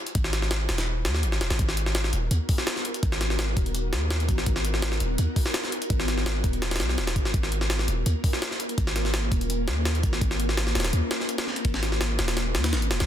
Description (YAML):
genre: drum and bass, jungle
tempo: 167 BPM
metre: 4/4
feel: straight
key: G# dorian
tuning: A4 = 442 Hz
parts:
  - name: jungle sampler-style drum kit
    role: drums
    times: 0.1-13.1 s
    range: hi-hat, kick drum, snare drum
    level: -26 LUFS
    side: equal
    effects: none
  - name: long sustained 808-style bass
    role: bass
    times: 0.2-13.1 s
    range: D#1 to D#2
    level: -26 LUFS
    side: equal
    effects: none
room: little or no reverb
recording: dense, heavily limited modern master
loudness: -23 LUFS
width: side -10 dB against mid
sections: 0.0-13.1 A section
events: none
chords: none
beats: | 0.15 0.51 0.87 1.23 | 1.59 1.95 2.31 2.67 | 3.03 3.39 3.75 4.11 | 4.46 4.82 5.18 5.54 | 5.90 6.26 6.62 6.98 | 7.34 7.70 8.06 8.42 | 8.78 9.14 9.49 9.85 | 10.21 10.57 10.93 11.29 | 11.65 12.01 12.37 12.73